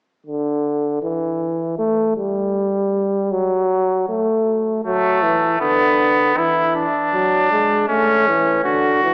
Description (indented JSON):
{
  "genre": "classical, imitative canzona for brass ensemble",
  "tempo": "79 BPM",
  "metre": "3/4",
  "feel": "straight",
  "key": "unclear",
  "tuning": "A4 = 442 Hz",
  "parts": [
    { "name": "mellow trombone", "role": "accompaniment", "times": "0.3-9.1 s", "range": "D3 to A3", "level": "-18 LUFS", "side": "equal", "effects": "none" },
    { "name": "warm trumpet", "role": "second line", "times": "4.8-9.1 s", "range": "A3 to F#4", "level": "-15 LUFS", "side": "equal", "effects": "none" }
  ],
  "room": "wet concert hall reverb, RT60 2.1 s",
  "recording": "worn, warbling old tape, cassette tape, warbly pitch drift, small speaker sound",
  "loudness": "-15 LUFS",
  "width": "side -29 dB against mid",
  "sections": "0.0-9.1 A section",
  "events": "none",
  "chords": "0.0 N.C.; 4.1 A5; 5.6 Bm/D; 6.4 E; 7.9 A"
}